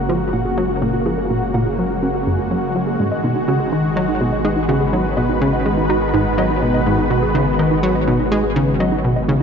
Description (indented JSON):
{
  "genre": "ambient, sequencer-driven space music",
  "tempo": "124 BPM",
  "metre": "4/4",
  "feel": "straight",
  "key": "unclear",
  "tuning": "A4 = 441 Hz",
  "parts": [
    { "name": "lush unison pad", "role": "sustained chords", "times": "0.0-9.4 s", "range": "C#3 to B4", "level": "-20 LUFS", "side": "equal", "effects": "chorus, shimmer reverb" },
    { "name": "warbly dusty pluck", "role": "arpeggios", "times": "0.0-9.4 s", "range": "D#4 to F#5", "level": "-24 LUFS", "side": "right 3 dB", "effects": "chorus, auto-pan, cassette tape, analog delay, shimmer reverb" },
    { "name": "plucky analog bass", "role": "riff", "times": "0.0-9.4 s", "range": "F#2 to D#4", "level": "-19 LUFS", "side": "equal", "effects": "analog delay" },
    { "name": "warm sub bass", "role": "bass", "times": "0.0-9.4 s", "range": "F#1 to G#1", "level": "-27 LUFS", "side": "equal", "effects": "none" }
  ],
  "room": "wet concert hall reverb, RT60 2.1 s",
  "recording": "cassette tape, nothing above 7.7 kHz",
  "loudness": "-15 LUFS",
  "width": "side -6 dB against mid",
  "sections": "0.0-9.4 A section",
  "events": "none",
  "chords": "0.0 F#add9; 3.0 G#m7",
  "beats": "0.09 0.57 | 1.06 1.54 2.02 2.51 | 2.99 3.48 3.96 4.44 | 4.93 5.41 5.90 6.38 | 6.86 7.35 7.83 8.31 | 8.80 9.28"
}